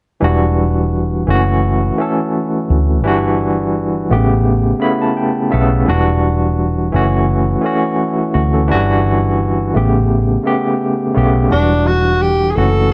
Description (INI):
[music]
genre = lush 1970s-style soul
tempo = 85 BPM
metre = 4/4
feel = swing 54% on 16ths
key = E dorian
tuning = A4 = 439 Hz
[part]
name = barky tine electric piano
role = accompaniment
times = 0.2-12.9 s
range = B2 to B5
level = -17 LUFS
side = equal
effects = overdrive, fast tremolo
[part]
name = vintage muted fingered electric bass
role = bass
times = 0.2-12.9 s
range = E1 to D2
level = -18 LUFS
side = equal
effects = none
[part]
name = breathy tenor saxophone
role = melody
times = 11.5-12.9 s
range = D4 to A4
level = -17 LUFS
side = equal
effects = none
[sound]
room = light reverb, small room ambience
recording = lossy compression artefacts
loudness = -15 LUFS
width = mono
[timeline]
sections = 0.2-11.5 A section; 11.5-12.9 B section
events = tine electric piano fill 4.5-5.9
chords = 0.2 Em9; 1.3 F#m7; 3.0 Em9/G; 4.1 A9; 5.9 Em9; 6.9 F#m7; 8.7 Em9/G; 9.8 A9; 11.5 Em9